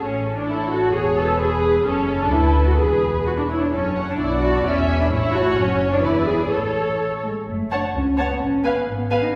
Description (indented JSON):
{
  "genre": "quick classical-period movement for string orchestra",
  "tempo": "129 BPM",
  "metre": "2/4",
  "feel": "rubato",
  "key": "A major",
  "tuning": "A4 = 439 Hz",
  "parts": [
    { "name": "muted studio violin section", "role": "melody", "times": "0.0-9.2 s", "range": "G#4 to C#6", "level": "-32 LUFS", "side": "equal", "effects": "none" },
    { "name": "muted symphonic viola section", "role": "accompaniment", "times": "0.0-9.2 s", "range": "C#4 to C#5", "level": "-24 LUFS", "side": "equal", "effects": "none" },
    { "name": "muted chamber cello section", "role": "bass", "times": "0.0-9.3 s", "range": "D2 to D#4", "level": "-29 LUFS", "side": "equal", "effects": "none" },
    { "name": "muted chamber double bass section", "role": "bass", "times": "0.0-9.2 s", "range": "E1 to D2", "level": "-28 LUFS", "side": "equal", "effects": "none" },
    { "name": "muted studio violin section", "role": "second line", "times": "0.5-9.2 s", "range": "A4 to F#5", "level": "-29 LUFS", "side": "equal", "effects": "none" }
  ],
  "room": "wet recital hall reverb, RT60 1.6 s",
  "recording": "recorded in a church or concert hall",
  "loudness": "-20 LUFS",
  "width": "mono",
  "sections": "0.0-7.5 A section; 7.5-9.4 B section",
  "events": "none",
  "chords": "0.0 A; 0.9 E; 1.9 F#m; 2.3 Bm/D; 2.8 E; 3.7 F#m; 4.2 Bm7; 4.7 E7; 5.1 A; 5.6 F#5; 6.0 E7; 6.5 A; 7.5 F#m; 8.4 Fdim/Ab"
}